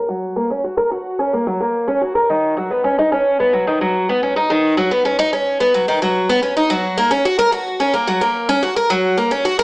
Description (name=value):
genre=folktronica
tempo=109 BPM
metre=4/4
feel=straight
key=F# major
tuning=A4 = 441 Hz
part: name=picked twelve-string acoustic guitar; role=solo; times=0.0-9.6 s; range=D#3 to A#4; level=-15 LUFS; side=equal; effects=digital delay
room=moderate studio reverb, RT60 0.6 s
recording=low-pass filter, small speaker sound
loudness=-15 LUFS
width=side -25 dB against mid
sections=0.0-6.7 A section; 6.7-9.6 B section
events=filter sweep 0.0-6.7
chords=none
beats=| 0.09 0.64 1.19 1.74 | 2.29 2.84 3.40 3.94 | 4.50 5.05 5.60 6.15 | 6.70 7.25 7.80 8.35 | 8.90 9.45